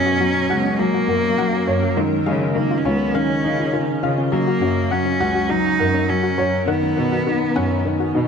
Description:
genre	piano and strings electronica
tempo	102 BPM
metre	4/4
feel	straight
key	F# major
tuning	A4 = 440 Hz
part	rich cello	melody	0.0-8.3 s	G#3 to D#4	-22 LUFS	right 1 dB	none
part	granular cloud pad	sustained chords	0.0-8.3 s	B2 to F#5	-27 LUFS	right 2 dB	built-in reverb
part	warm upright piano	riff	0.0-8.3 s	D#3 to C#5	-21 LUFS	left 2 dB	none
part	rich studio cello section	bass	0.0-8.3 s	C#2 to C#3	-24 LUFS	equal	none
part	soft round pluck	arpeggios	0.1-8.2 s	C#4 to F#5	-29 LUFS	left 4 dB	chorus, ping-pong delay
room	moderate scoring stage reverb, RT60 1.8 s, small room ambience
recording	dark, warm production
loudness	-17 LUFS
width	side -6 dB against mid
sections	0.0-8.3 A section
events	none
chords	0.0 F#; 2.0 C#add9; 4.3 F#; 6.7 Badd9

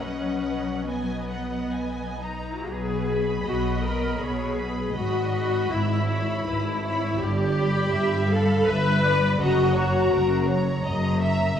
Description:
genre	classical, slow romantic movement for string orchestra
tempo	81 BPM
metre	3/4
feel	uneven beats, rubato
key	B major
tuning	A4 = 441 Hz
part	warm symphonic violin section	melody	0.0-11.6 s	F#5 to B5	-34 LUFS	left 1 dB	none
part	rich studio violin section	second line	0.0-11.6 s	A#4 to E#5	-33 LUFS	right 1 dB	none
part	clear symphonic viola section	accompaniment	0.0-10.5 s	B3 to B4	-26 LUFS	left 2 dB	none
part	clear symphonic double bass section	bass	0.0-11.5 s	F#1 to B1	-27 LUFS	right 1 dB	none
part	rich symphonic cello section	bass	0.0-11.5 s	F#2 to F#3	-29 LUFS	left 1 dB	none
room	moderate scoring stage reverb, RT60 1.8 s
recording	none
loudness	-22 LUFS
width	side -8 dB against mid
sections	0.0-2.7 A section; 2.7-11.6 B section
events	none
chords	0.0 B; 5.0 E/G#; 7.2 G; 9.4 F#

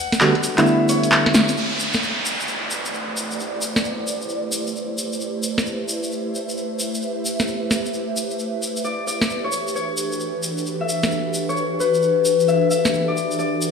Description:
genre	UK garage, two-step garage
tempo	132 BPM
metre	4/4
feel	swing 64% on 16ths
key	A minor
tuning	A4 = 444 Hz
part	Celtic harp	melody	0.0-2.8, 8.8-13.7 s	B4 to F#5	-23 LUFS	left 7 dB	digital delay
part	punchy analog drum machine	drums	0.1-12.9 s	handclaps, hi-hat, snare drum	-20 LUFS	equal	studio reverb
part	tube shaker	percussion	0.1-13.7 s	none	-29 LUFS	left 1 dB	none
part	percussive organ stab	stabs	0.2-1.6 s	D3 to F#4	-18 LUFS	right 1 dB	analog chorus, digital delay
part	ethereal airy pad	sustained chords	2.4-13.7 s	E3 to E5	-25 LUFS	right 2 dB	ensemble chorus, built-in reverb
part	downlifter	sound effects	1.6-5.2 s	none	-26 LUFS	right 1 dB	none
room	wet lush hall reverb, RT60 2.4 s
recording	played on a big sound system in a bare room, stone room reverb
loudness	-19 LUFS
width	side -6 dB against mid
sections	0.0-1.6 A section; 1.6-13.7 B section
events	drum fill 1.3; band accent 1.3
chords	0.0 Em11; 1.6 Am11; 8.8 Em11

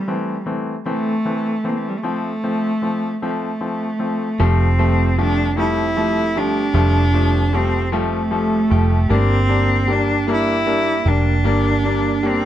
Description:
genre	six-eight pop ballad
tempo	51 BPM (dotted quarters)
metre	6/8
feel	straight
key	unclear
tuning	A4 = 438 Hz
part	rich cello	melody	0.0-12.5 s	G3 to E4	-20 LUFS	right 1 dB	none
part	bright concert grand piano	accompaniment	0.1-12.5 s	E3 to D4	-22 LUFS	left 3 dB	none
part	direct-recorded clean electric guitar	arpeggios	4.4-12.5 s	F3 to G4	-26 LUFS	right 8 dB	ping-pong delay
part	vintage muted fingered electric bass	bass	4.4-12.5 s	F1 to G1	-18 LUFS	equal	none
room	light reverb, studio reverb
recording	none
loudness	-16 LUFS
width	side -12 dB against mid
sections	0.0-4.4 A section; 4.4-12.5 B section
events	none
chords	0.0 Am; 2.0 F; 4.4 Fadd9; 9.1 Gm

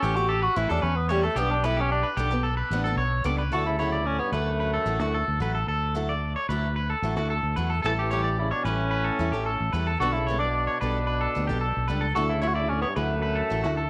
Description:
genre	highlife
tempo	111 BPM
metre	4/4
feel	straight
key	D major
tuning	A4 = 440 Hz
part	warm tenor saxophone	melody	0.0-13.9 s	G3 to A4	-30 LUFS	equal	none
part	picked acoustic archtop guitar	accompaniment	0.0-13.8 s	E3 to A4	-36 LUFS	equal	none
part	electric guitar at the edge of break-up	arpeggios	0.0-13.9 s	F#4 to D5	-32 LUFS	equal	none
part	fingered electric bass	bass	0.0-13.9 s	A1 to E2	-30 LUFS	equal	none
part	bright trombone	second line	3.6-13.9 s	F#2 to E3	-38 LUFS	equal	none
room	moderate echo chamber reverb, RT60 1.4 s, small room ambience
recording	none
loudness	-26 LUFS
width	mono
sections	0.0-3.5 A section; 3.5-13.9 B section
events	tenor saxophone solo 0.0-3.5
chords	0.0 A7; 1.4 Gadd9/B; 3.5 Dadd9; 7.8 A7; 10.0 Gadd9/B; 12.2 Dadd9

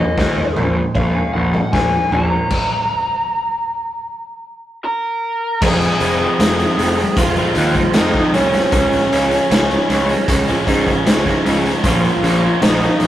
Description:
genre	quiet-loud alternative rock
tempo	77 BPM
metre	4/4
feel	straight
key	F minor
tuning	A4 = 435 Hz
part	lead guitar through a small cranked amp	melody	0.0-13.1 s	Db4 to Bb5	-20 LUFS	equal	overdrive
part	electric guitar through a small old amp	arpeggios	0.0-2.5 s	Bb2 to Db4	-25 LUFS	equal	phaser
part	fuzz picked electric bass	bass	0.0-13.1 s	F1 to Ab2	-19 LUFS	equal	overdrive
part	raw garage drum kit	drums	0.2-13.1 s	crash cymbal, hi-hat, kick drum, snare drum, toms	-18 LUFS	equal	none
part	raw garage guitar	riff	5.6-13.1 s	F2 to Db4	-21 LUFS	right 4 dB	overdrive
part	thick fuzz guitar	riff	5.6-13.1 s	F2 to Db4	-24 LUFS	left 5 dB	distortion
room	moderate studio reverb, RT60 0.7 s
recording	rough rehearsal-room recording, tube saturation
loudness	-14 LUFS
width	side -12 dB against mid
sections	0.0-5.6 A section; 5.6-13.1 B section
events	stop 2.5-5.6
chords	0.0 Bbm; 2.5 N.C.; 5.6 Fm; 8.7 Db; 11.8 Bbm

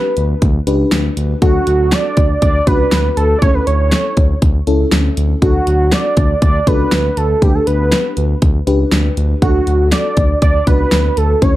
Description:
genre	synth-pop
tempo	120 BPM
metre	4/4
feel	straight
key	D major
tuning	A4 = 440 Hz
part	fat analog lead	melody	0.0-11.6 s	F#4 to D5	-16 LUFS	right 2 dB	chorus, tape echo
part	FM electric piano with soft pad layer	accompaniment	0.0-11.6 s	C#4 to B4	-20 LUFS	left 2 dB	chorus, tremolo
part	smooth synth bass	bass	0.2-11.6 s	C#2 to D2	-15 LUFS	equal	none
part	pop drum kit	drums	0.2-11.5 s	hi-hat, kick drum, snare drum	-15 LUFS	equal	none
room	light reverb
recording	dark, warm production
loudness	-11 LUFS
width	side -15 dB against mid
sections	0.0-11.6 A section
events	none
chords	0.0 G/D; 1.4 D; 3.4 A/D; 5.4 D; 7.4 G/D; 9.4 D

